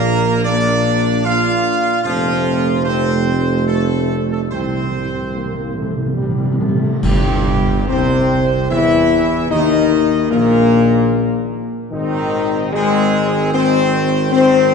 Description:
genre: classical, ceremonial fanfare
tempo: 74 BPM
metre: 3/4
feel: straight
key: unclear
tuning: A4 = 438 Hz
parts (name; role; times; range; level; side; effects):
- warm trumpet section; melody; 0.0-14.7 s; Eb4 to F5; -23 LUFS; right 1 dB; none
- bright trombone section; sustained chords; 0.0-14.7 s; G2 to F4; -23 LUFS; right 1 dB; none
- mellow French horn section; sustained chords; 0.0-14.7 s; Eb3 to E4; -17 LUFS; left 4 dB; none
- mellow tuba; bass; 0.0-14.7 s; F1 to E2; -19 LUFS; right 3 dB; none
- cymbal swell, clash cymbals and concert bass drum; percussion; 4.5-8.7 s; none; -24 LUFS; equal; none
- timpani; percussion; 4.5-8.3 s; C3; -21 LUFS; equal; none
room: wet church reverb, RT60 2.9 s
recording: heard from further back in the room, nothing above 10.4 kHz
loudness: -14 LUFS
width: side -5 dB against mid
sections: 0.0-7.0 A section; 7.0-14.7 B section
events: timpani fill 4.5-7.0; band accent 7.0-7.9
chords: 0.0 Bb; 2.0 F; 4.5 C; 7.0 C/G; 9.5 Eb5; 11.9 Ab

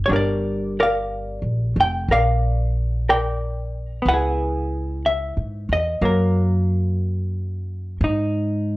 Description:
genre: jazz ballad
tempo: 61 BPM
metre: 4/4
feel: swing 68% on 8ths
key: unclear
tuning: A4 = 440 Hz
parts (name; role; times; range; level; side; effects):
- vintage hollow-body jazz guitar; accompaniment; 0.0-8.8 s; Gb3 to G5; -21 LUFS; equal; none
- upright bass; bass; 0.0-8.8 s; F1 to Ab2; -22 LUFS; equal; none
room: light reverb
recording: worn, warbling old tape, cassette tape, warbly pitch drift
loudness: -19 LUFS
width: side -19 dB against mid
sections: 0.0-8.8 A section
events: none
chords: 0.1 Gm7; 4.1 Dbm7; 6.0 Gb; 8.0 Ab5

